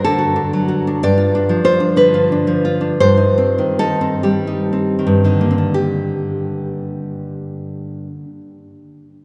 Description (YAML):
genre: romantic piece for solo classical guitar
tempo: 38-64 BPM (dotted quarters)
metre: 6/8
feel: rubato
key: G minor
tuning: A4 = 440 Hz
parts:
  - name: nylon-string guitar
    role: solo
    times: 0.0-8.7 s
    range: G2 to D5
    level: -17 LUFS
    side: equal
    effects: none
room: wet cathedral reverb, RT60 4.8 s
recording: recorded in a church or concert hall, nothing above 10.7 kHz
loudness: -16 LUFS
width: mono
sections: 0.0-5.7 A section; 5.7-9.2 B section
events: slowing down 0.0-5.7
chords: 0.0 D/G; 1.0 G7; 3.0 Cm/G; 5.7 Gm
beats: 0.01 | 1.00 1.96 | 3.00 4.24 | 5.72 7.18 | 8.63